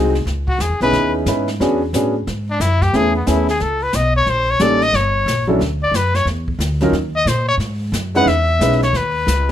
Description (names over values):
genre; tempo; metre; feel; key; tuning
jazz, small-group swing and bop; 180 BPM; 4/4; swing 64% on 8ths; C# minor; A4 = 440 Hz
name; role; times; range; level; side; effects
warm grand piano; accompaniment; 0.0-9.5 s; F#3 to B4; -17 LUFS; equal; none
upright bass; bass; 0.0-9.5 s; G1 to A#2; -20 LUFS; equal; none
jazz brush drum kit; drums; 0.2-9.5 s; brushed snare drum, hi-hat, kick drum, snare drum; -26 LUFS; left 1 dB; none
bright trumpet; melody; 0.5-9.5 s; B3 to F#5; -17 LUFS; left 2 dB; none
room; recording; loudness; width
light reverb; none; -15 LUFS; side -10 dB against mid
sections
0.3-9.5 A section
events
trumpet solo 0.0-9.5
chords
0.3 C#m9; 1.6 E13; 2.9 Amaj9; 4.3 D#7#11; 5.6 Dadd9; 6.9 D#5; 7.6 G#5; 8.3 C#m9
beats
| 0.27 0.60 0.93 1.27 | 1.60 1.93 2.27 2.60 | 2.93 3.27 3.60 3.93 | 4.26 4.60 4.93 5.26 | 5.60 5.93 6.27 6.60 | 6.93 7.27 7.60 7.93 | 8.27 8.60 8.94 9.27